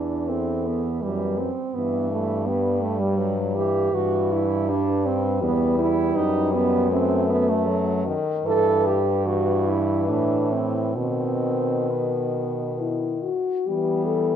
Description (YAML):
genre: classical, lyrical piece for horn quartet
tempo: 63-85 BPM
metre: 3/4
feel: rubato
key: E minor from 3.9 s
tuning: A4 = 439 Hz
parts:
  - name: dark French horn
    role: melody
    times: 0.0-14.4 s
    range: E4 to B4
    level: -28 LUFS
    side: left 9 dB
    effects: none
  - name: mellow French horn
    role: second line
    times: 0.0-14.4 s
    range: G3 to A4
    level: -24 LUFS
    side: right 4 dB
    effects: none
  - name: warm French horn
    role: accompaniment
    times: 0.0-14.4 s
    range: D#3 to A3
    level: -28 LUFS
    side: left 4 dB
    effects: none
  - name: warm French horn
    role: bass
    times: 0.0-14.4 s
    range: E2 to E3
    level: -26 LUFS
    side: equal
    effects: none
room: moderate concert hall reverb, RT60 2.3 s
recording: dark, warm production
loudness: -20 LUFS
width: side -9 dB against mid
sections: 0.0-13.7 A section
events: none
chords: 0.0 E5; 1.8 Em/G; 6.2 B7/F#; 8.5 Em/G; 10.1 Am; 11.0 B; 13.7 Em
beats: 0.30 1.04 | 1.76 2.47 3.18 | 3.93 4.68 5.42 | 6.16 6.91 7.68 | 8.46 9.27 10.10 | 10.97 11.91 12.80 | 13.67